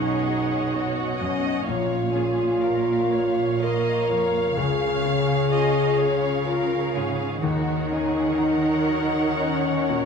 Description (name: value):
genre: cinematic, emotional film score for orchestra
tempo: 63 BPM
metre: 3/4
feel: rubato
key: Bb phrygian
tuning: A4 = 440 Hz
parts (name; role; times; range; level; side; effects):
- muted symphonic violin section; melody; 0.0-10.1 s; F5 to Gb5; -32 LUFS; left 4 dB; none
- muted symphonic violin section; second line; 0.0-10.1 s; F#4 to F5; -32 LUFS; equal; none
- bright baby grand piano; accompaniment; 0.0-10.1 s; Bb1 to Bb4; -31 LUFS; equal; none
- muted symphonic viola section; accompaniment; 0.0-10.1 s; Bb4 to Eb5; -33 LUFS; right 4 dB; none
- dark French horn section; sustained chords; 0.0-10.1 s; Db4 to Bb4; -24 LUFS; left 1 dB; none
- concert harp; arpeggios; 0.0-10.1 s; Bb2 to F5; -31 LUFS; left 7 dB; none
- muted symphonic cello section; bass; 0.0-10.1 s; Bb2 to Eb3; -28 LUFS; right 6 dB; none
room: moderate scoring stage reverb, RT60 2.0 s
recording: dark, warm production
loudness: -20 LUFS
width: side -6 dB against mid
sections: 0.0-10.1 A section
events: none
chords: 0.0 Badd9; 1.7 Bbm; 4.6 Db; 7.4 Ebm7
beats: 0.74 | 1.68 2.63 3.62 | 4.57 5.52 6.47 | 7.42 8.39 9.38